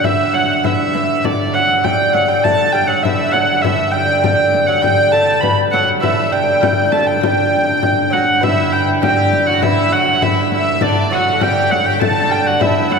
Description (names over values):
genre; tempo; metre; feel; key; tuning
medieval dance; 100 BPM; 2/4; straight; unclear; A4 = 439 Hz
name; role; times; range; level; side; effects
warm hurdy-gurdy; melody; 0.0-13.0 s; D5 to B5; -16 LUFS; right 2 dB; none
lute; second line; 0.0-13.0 s; D3 to B3; -19 LUFS; equal; none
chamber organ, cornet; drone; 0.0-13.0 s; G2 to D3; -22 LUFS; equal; none
frame drum; percussion; 0.0-13.0 s; none; -20 LUFS; left 4 dB; none
clear fiddle; second line; 8.1-13.0 s; D4 to A4; -22 LUFS; left 3 dB; none
room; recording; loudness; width
wet cathedral reverb, RT60 5.9 s; recorded in a church or concert hall; -12 LUFS; side -5 dB against mid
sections
0.0-8.4 A section; 8.4-13.0 A section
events
none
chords
none